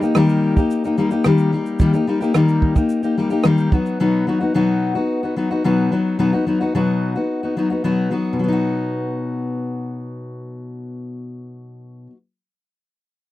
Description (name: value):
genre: acoustic pop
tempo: 109 BPM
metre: 4/4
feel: straight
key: B major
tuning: A4 = 441 Hz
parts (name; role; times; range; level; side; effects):
- fingerpicked steel-string acoustic guitar; accompaniment; 0.0-12.2 s; B2 to G4; -17 LUFS; left 2 dB; none
- compact cocktail drum kit; drums; 0.0-4.0 s; kick drum, rim click, shaker; -17 LUFS; right 2 dB; none
room: light reverb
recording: dry, close 1970s-style studio recording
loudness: -16 LUFS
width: side -15 dB against mid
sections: 0.0-8.4 A section; 8.4-10.6 B section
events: none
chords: 0.0 D#; 3.7 B